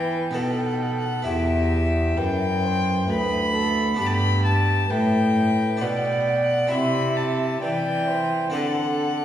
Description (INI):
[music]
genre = classical, baroque-style sonata movement with continuo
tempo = 66 BPM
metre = 3/4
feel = straight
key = E minor, G major from 4.0 s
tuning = A4 = 440 Hz
[part]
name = rich violin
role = melody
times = 0.0-9.2 s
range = E5 to B5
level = -26 LUFS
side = left 3 dB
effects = none
[part]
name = dark violin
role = second line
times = 0.0-9.2 s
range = G4 to E5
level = -27 LUFS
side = right 2 dB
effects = none
[part]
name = harpsichord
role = accompaniment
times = 0.0-9.2 s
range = D2 to E5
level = -28 LUFS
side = left 1 dB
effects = none
[part]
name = rich cello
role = bass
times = 0.0-9.2 s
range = D2 to E3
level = -24 LUFS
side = right 1 dB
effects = none
[sound]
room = wet recital hall reverb, RT60 1.7 s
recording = heard from further back in the room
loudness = -20 LUFS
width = side -10 dB against mid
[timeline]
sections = 0.0-9.2 A section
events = none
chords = 0.4 B7; 1.3 Em; 4.0 G; 5.8 Bm; 6.7 C; 8.5 D7